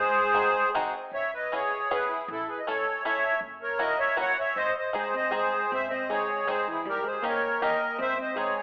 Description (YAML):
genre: musette waltz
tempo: 158 BPM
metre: 3/4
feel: rubato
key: C# minor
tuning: A4 = 440 Hz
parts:
  - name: accordion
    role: melody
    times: 0.0-8.6 s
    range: E4 to F#5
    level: -25 LUFS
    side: equal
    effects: light tremolo tuning
  - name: hollow-body jazz guitar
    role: second line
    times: 0.0-0.7, 5.0-8.6 s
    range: E3 to B#3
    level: -36 LUFS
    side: equal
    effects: none
  - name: upright bass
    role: bass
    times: 0.0-8.5 s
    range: F#1 to G#2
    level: -52 LUFS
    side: equal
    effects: none
  - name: bluegrass banjo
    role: accompaniment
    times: 0.3-8.6 s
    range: G#3 to A4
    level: -32 LUFS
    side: left 1 dB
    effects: none
room: wet recital hall reverb, RT60 1.3 s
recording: telephone sound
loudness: -24 LUFS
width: side -27 dB against mid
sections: 0.0-1.1 A section; 1.1-8.6 B section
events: none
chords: 0.0 G#7; 1.1 C#m7; 2.3 A; 3.4 F#7; 4.6 G#; 6.9 D#7; 8.0 G#